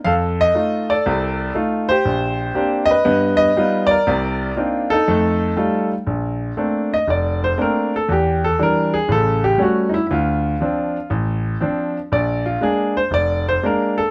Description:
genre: solo jazz.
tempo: 119 BPM.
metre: 4/4.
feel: swing 67% on 8ths.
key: Bb major.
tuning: A4 = 440 Hz.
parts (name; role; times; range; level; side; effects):
warm concert grand piano; solo; 0.0-14.1 s; F1 to F5; -19 LUFS; equal; none.
room: moderate studio reverb, RT60 0.6 s.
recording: none.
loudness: -19 LUFS.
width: mono.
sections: 0.0-6.1 A section; 6.1-14.1 B section.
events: grand piano solo 6.1-14.1.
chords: 0.1 F7; 2.1 Bb69; 3.1 G7b13; 4.1 Cm11; 5.1 F9; 6.1 Bbmaj9; 8.1 Em7b5; 9.1 A7; 10.1 Dm7; 12.1 Bb7.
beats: | 0.05 0.55 1.05 1.55 | 2.06 2.56 3.06 3.56 | 4.06 4.57 5.07 5.57 | 6.07 6.57 7.08 7.58 | 8.08 8.59 9.09 9.59 | 10.09 10.60 11.10 11.60 | 12.11 12.61 13.11 13.62.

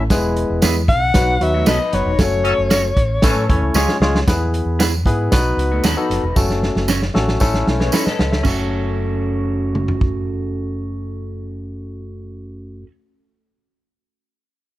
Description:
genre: uptempo 1960s-style soul.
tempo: 115 BPM.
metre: 4/4.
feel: straight.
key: F# dorian.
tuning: A4 = 440 Hz.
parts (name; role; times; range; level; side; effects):
barky tine electric piano; accompaniment; 0.0-12.9 s; F#3 to E5; -22 LUFS; left 2 dB; overdrive.
fingered electric bass; bass; 0.0-12.8 s; E1 to A2; -22 LUFS; equal; none.
vintage drum kit; drums; 0.1-10.1 s; crash cymbal, hi-hat, kick drum, snare drum, toms; -19 LUFS; equal; none.
tambourine; percussion; 0.1-8.7 s; none; -28 LUFS; right 3 dB; none.
electric guitar through a small old amp; stabs; 0.6-12.9 s; B3 to C#5; -25 LUFS; right 5 dB; none.
breathy alto saxophone; melody; 0.9-3.8 s; C#5 to F#5; -19 LUFS; left 3 dB; slapback echo.
electric guitar through a small old amp; riff; 1.5-2.2, 5.7-8.4 s; A3 to C#5; -26 LUFS; left 4 dB; analog chorus.
warm horn section; second line; 2.4-3.6 s; E3 to A4; -24 LUFS; equal; none.
room: small room reverb.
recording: none.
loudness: -15 LUFS.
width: side -15 dB against mid.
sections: 0.0-4.3 A section; 4.3-8.4 B section; 8.4-12.6 C section.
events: band accent 2.2-4.3; drum fill 3.8-4.3, 6.4-8.4.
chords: 0.1 E; 1.1 B; 2.2 F#m; 3.2 A; 3.8 C#; 4.3 E; 5.3 B; 6.4 F#m; 7.4 A; 8.4 F#m.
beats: | 0.10 0.62 1.15 1.67 | 2.19 2.71 3.23 3.75 | 4.28 4.80 5.32 5.84 | 6.36 6.88 7.41 7.93 | 8.45 8.97 9.49 10.01 | 10.54 11.06 11.58 12.10.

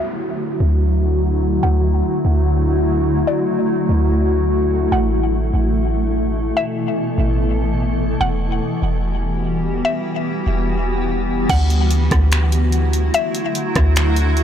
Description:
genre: hip hop, atmospheric cloud-rap.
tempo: 146 BPM.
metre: 4/4.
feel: half-time.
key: D major.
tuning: A4 = 440 Hz.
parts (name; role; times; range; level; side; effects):
mallet-like synth pluck; melody; 0.0-14.4 s; D5 to F#5; -26 LUFS; left 2 dB; chorus, low-pass filter, ping-pong delay.
granular cloud pad; sustained chords; 0.0-14.4 s; B2 to A4; -19 LUFS; left 1 dB; built-in reverb, sidechain pumping, low-pass filter.
downlifter; sound effects; 0.0-1.6 s; none; -37 LUFS; right 1 dB; none.
warm 808-style bass; bass; 0.6-14.4 s; E1 to D2; -18 LUFS; equal; transformer saturation.
smooth R&B drum kit; drums; 11.5-14.4 s; crash cymbal, finger snaps, hi-hat, kick drum, rim click; -21 LUFS; equal; overdrive, soft clipping on snare.
room: light reverb.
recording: blown-out, overdriven recording, overdrive.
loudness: -16 LUFS.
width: side -9 dB against mid.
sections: 0.0-11.5 A section; 11.5-14.4 B section.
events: filter sweep 0.0-11.5.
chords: 0.0 Dadd9; 4.9 Asus2; 8.2 Emadd9; 11.5 Dadd9.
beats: 0.40 0.81 1.22 | 1.63 2.04 2.45 2.87 | 3.28 3.69 4.10 4.51 | 4.92 5.33 5.74 6.15 | 6.56 6.97 7.38 7.80 | 8.21 8.62 9.03 9.44 | 9.85 10.26 10.67 11.08 | 11.49 11.91 12.32 12.73 | 13.14 13.55 13.96 14.37.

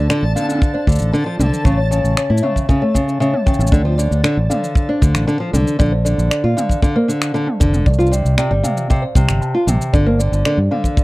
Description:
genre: folktronica.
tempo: 116 BPM.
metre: 4/4.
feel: straight.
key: D minor.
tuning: A4 = 440 Hz.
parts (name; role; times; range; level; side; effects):
nylon-string guitar; arpeggios; 0.0-11.0 s; C3 to F4; -18 LUFS; equal; tape echo.
fingered electric bass; bass; 0.0-10.7 s; F1 to Bb2; -16 LUFS; equal; none.
backwards swelling texture; texture; 0.0-3.7 s; A5; -32 LUFS; left 2 dB; built-in reverb.
music box; second line; 0.1-10.8 s; C5 to A5; -24 LUFS; equal; tape echo.
organic electronic drum kit; drums; 0.1-11.0 s; finger snaps, shaker, toms; -24 LUFS; right 1 dB; overdrive, small room reverb.
kick drum; drums; 0.6-11.0 s; none; -15 LUFS; equal; small room reverb.
room: little or no reverb.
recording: dry, close 1970s-style studio recording.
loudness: -14 LUFS.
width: side -20 dB against mid.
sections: 0.0-3.7 A section; 3.7-11.0 B section.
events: none.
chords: 0.0 D5; 1.7 A; 3.7 N.C.; 5.8 Bb; 7.9 C5; 9.9 G5.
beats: 0.10 0.62 1.14 | 1.66 2.17 2.69 3.21 | 3.73 4.24 4.76 5.28 | 5.79 6.31 6.83 7.35 | 7.86 8.38 8.90 9.42 | 9.93 10.45 10.97.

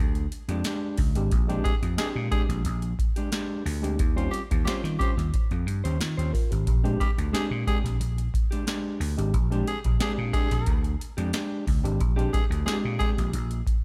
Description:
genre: funk.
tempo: 90 BPM.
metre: 4/4.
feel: straight.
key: Bb mixolydian.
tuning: A4 = 440 Hz.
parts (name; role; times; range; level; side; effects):
mellow electric guitar; accompaniment; 0.0-13.6 s; Ab3 to C5; -37 LUFS; equal; none.
vintage slap bass; bass; 0.0-13.6 s; Ab1 to Eb3; -30 LUFS; equal; tube saturation.
booming analog drum machine; drums; 0.2-13.8 s; hi-hat, kick drum, snare drum; -29 LUFS; equal; none.
mellow tine electric piano; stabs; 1.2-13.3 s; G3 to Bb4; -36 LUFS; equal; none.
breathy tenor saxophone; second line; 1.6-13.1 s; G4 to Ab4; -36 LUFS; equal; none.
room: little or no reverb.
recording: none.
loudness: -26 LUFS.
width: mono.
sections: 0.0-13.8 A section.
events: none.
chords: 0.0 Bb13; 4.0 Eb13; 6.7 Bb13.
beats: 0.65 | 1.32 1.99 2.66 3.33 | 4.00 4.67 5.33 6.00 | 6.67 7.34 8.01 8.67 | 9.34 10.01 10.67 11.34 | 12.00 12.67 13.33.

